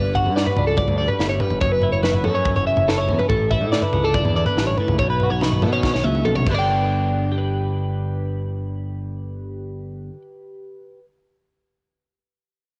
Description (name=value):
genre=math rock and midwest emo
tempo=142 BPM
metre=4/4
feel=straight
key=G lydian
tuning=A4 = 437 Hz
part: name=twelve-string electric guitar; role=accompaniment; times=0.0-11.1 s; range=E2 to B4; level=-30 LUFS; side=equal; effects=analog chorus, cassette tape
part: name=twelve-string electric guitar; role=arpeggios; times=0.0-10.2 s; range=A4 to G5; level=-24 LUFS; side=equal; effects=cassette tape, tape echo
part: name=modern bright picked electric bass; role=bass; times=0.0-10.1 s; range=F#1 to B2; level=-26 LUFS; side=equal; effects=none
part: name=crisp fusion drum kit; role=drums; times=0.2-6.6 s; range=crash cymbal, kick drum, snare drum, toms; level=-25 LUFS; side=equal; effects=cassette tape
room=light reverb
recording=home recording on cassette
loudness=-20 LUFS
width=mono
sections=0.0-6.7 A section; 6.7-10.1 B section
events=drum fill 5.8-6.7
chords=0.0 Gmaj9; 1.6 F#m7; 3.3 A7sus4; 5.0 B9; 6.5 G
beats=0.36 0.78 1.20 | 1.61 2.04 2.46 2.88 | 3.30 3.72 4.14 4.56 | 4.99 5.41 5.83 6.25 | 6.68 7.10 7.52 7.95 | 8.37 8.79 9.22 9.64